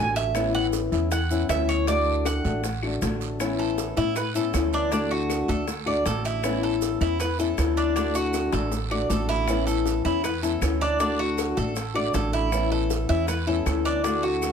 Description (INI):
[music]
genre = latin, Cuban son and guajira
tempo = 158 BPM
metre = 4/4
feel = straight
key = A major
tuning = A4 = 440 Hz
[part]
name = flamenco guitar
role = accompaniment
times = 0.0-14.5 s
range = D3 to F#4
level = -26 LUFS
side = left 6 dB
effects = none
[part]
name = Cuban tres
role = arpeggios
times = 0.0-14.5 s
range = D4 to G#5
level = -27 LUFS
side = right 4 dB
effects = none
[part]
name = upright bass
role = bass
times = 0.0-14.5 s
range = A1 to A2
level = -28 LUFS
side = right 2 dB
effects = none
[part]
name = guiro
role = percussion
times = 0.2-14.5 s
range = none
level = -40 LUFS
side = right 9 dB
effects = none
[part]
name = maracas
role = percussion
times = 0.2-14.5 s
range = none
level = -39 LUFS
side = right 9 dB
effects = none
[part]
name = bongos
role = percussion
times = 0.3-14.5 s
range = none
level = -35 LUFS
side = left 5 dB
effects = none
[part]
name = claves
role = percussion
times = 0.4-14.5 s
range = none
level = -39 LUFS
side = left 3 dB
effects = none
[sound]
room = light reverb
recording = none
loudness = -22 LUFS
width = side -7 dB against mid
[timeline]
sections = 0.0-3.4 A section; 3.4-14.5 B section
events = Cuban tres solo 0.0-3.4; drum fill 8.3-9.5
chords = 0.4 Aadd9; 1.9 D; 3.4 Aadd9; 4.9 D; 6.4 Aadd9; 8.0 D; 9.5 Aadd9; 11.0 D; 12.5 Aadd9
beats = | 0.35 0.73 1.11 1.50 | 1.88 2.26 2.64 3.02 | 3.40 3.78 4.16 4.54 | 4.92 5.30 5.68 6.06 | 6.44 6.82 7.20 7.58 | 7.96 8.34 8.72 9.10 | 9.48 9.86 10.24 10.62 | 11.00 11.38 11.76 12.14 | 12.53 12.90 13.29 13.66 | 14.04 14.43